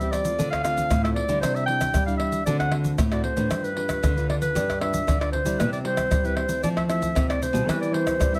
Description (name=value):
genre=samba and choro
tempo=115 BPM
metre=4/4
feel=straight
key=C major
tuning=A4 = 436 Hz
part: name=warm clarinet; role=melody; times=0.0-8.4 s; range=B4 to G5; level=-29 LUFS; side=equal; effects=none
part: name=nylon-string guitar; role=accompaniment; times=0.0-8.4 s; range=A2 to B4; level=-32 LUFS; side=equal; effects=none
part: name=nylon-string guitar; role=bass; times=0.0-8.4 s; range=G2 to G3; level=-31 LUFS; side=equal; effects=none
part: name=egg shaker, pandeiro, tamborim and surdo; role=percussion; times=0.0-8.4 s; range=none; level=-29 LUFS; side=equal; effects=none
room=moderate large studio reverb, RT60 0.9 s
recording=none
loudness=-24 LUFS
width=mono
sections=0.0-8.4 A section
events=none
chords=0.4 Dm7; 1.4 Cadd9; 2.5 D7; 3.5 G7; 5.6 C; 6.6 Fmaj7; 7.7 C/E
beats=0.38 0.90 | 1.43 1.95 2.47 2.99 | 3.51 4.03 4.55 5.07 | 5.59 6.11 6.63 7.16 | 7.68 8.20